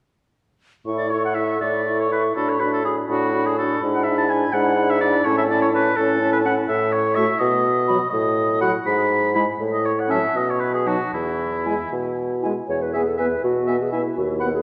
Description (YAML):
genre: quick classical-period movement for wind quintet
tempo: 75-85 BPM (dotted quarters)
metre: 6/8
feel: rubato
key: A major, E major from 6.7 s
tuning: A4 = 440 Hz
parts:
  - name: concert flute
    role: melody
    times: 0.9-14.5 s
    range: G#5 to C#6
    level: -31 LUFS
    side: equal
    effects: none
  - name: clear French horn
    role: accompaniment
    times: 0.9-14.5 s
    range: F#3 to E4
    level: -30 LUFS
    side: equal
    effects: none
  - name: dark clarinet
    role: accompaniment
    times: 0.9-14.6 s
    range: C#4 to C#5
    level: -30 LUFS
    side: equal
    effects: none
  - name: warm bassoon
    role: bass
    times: 0.9-14.6 s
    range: D#2 to B2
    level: -25 LUFS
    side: equal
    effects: none
  - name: warm oboe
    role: second line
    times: 1.0-14.5 s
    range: E4 to B5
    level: -26 LUFS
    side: equal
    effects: none
room: wet concert hall reverb, RT60 2.2 s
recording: worn, warbling old tape, cassette tape, warbly pitch drift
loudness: -21 LUFS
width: mono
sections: 0.9-12.7 A section; 12.7-14.6 B section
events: none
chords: 0.9 A; 2.4 Bm7/A; 3.8 E7/G#; 5.3 A; 6.7 F#m/A (rootless); 7.4 B; 8.1 B7/A (rootless); 8.9 E/G#; 9.6 F#m/A (rootless); 10.3 B; 11.1 E5; 12.7 E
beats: | 0.86 1.62 | 2.36 3.10 | 3.82 4.54 | 5.26 5.97 | 6.69 7.41 | 8.13 8.87 | 9.60 10.35 | 11.13 11.92 | 12.69 13.44 | 14.17